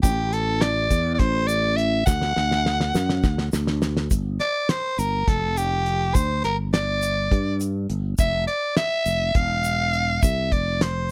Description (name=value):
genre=progressive instrumental, band music in an uneven meter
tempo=206 BPM (eighths)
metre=7/8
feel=straight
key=G dorian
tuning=A4 = 440 Hz
part: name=raspy soprano saxophone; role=melody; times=0.0-11.1 s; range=G4 to F#5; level=-26 LUFS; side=equal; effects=none
part: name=sustaining fretless electric bass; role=bass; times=0.0-11.1 s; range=E1 to G2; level=-27 LUFS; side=equal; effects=analog chorus
part: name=damped 70s drum kit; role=drums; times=0.0-10.9 s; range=hi-hat, kick drum, snare drum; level=-25 LUFS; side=equal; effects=none
part: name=tube shaker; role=percussion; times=0.0-10.5 s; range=none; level=-38 LUFS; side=equal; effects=none
room=little or no reverb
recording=none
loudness=-23 LUFS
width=mono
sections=0.0-4.1 A section; 4.1-11.1 B section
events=drum fill 2.1-4.1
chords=0.0 A5; 2.1 D; 4.1 G5; 8.2 F5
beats=| 0.03 0.33 0.62 0.91 1.20 1.49 1.78 | 2.07 2.37 2.66 2.95 3.24 3.53 3.82 | 4.11 4.40 4.69 4.99 5.28 5.57 5.86 | 6.15 6.44 6.73 7.02 7.32 7.61 7.90 | 8.19 8.48 8.77 9.06 9.36 9.65 9.94 | 10.23 10.52 10.81 11.11